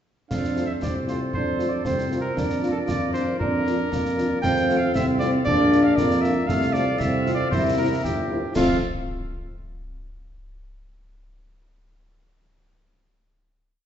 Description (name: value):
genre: military-style march for wind band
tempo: 116 BPM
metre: 2/4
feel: straight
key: F major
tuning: A4 = 440 Hz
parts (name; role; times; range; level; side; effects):
- warm cornet; melody; 0.3-8.8 s; F4 to G5; -28 LUFS; equal; none
- warm euphonium; second line; 0.3-8.2 s; A3 to F4; -26 LUFS; right 1 dB; none
- warm woodwind section; second line; 0.3-8.8 s; A4 to F5; -31 LUFS; left 2 dB; none
- warm tuba; bass; 0.3-8.8 s; G1 to F2; -25 LUFS; right 1 dB; none
- concert snare drum, clash cymbals and concert bass drum; drums; 0.3-8.8 s; none; -30 LUFS; left 1 dB; none
- mellow French horn section; accompaniment; 0.6-8.8 s; A3 to F4; -30 LUFS; left 3 dB; none
room: wet recital hall reverb, RT60 1.7 s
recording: recorded in a church or concert hall, nothing above 7.8 kHz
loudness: -20 LUFS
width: side -9 dB against mid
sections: 0.3-8.6 A section; 8.6-9.6 final chord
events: none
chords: 0.3 F; 2.4 Bb/F; 4.4 F; 5.5 Bb; 6.5 F/C; 7.5 C7; 8.6 F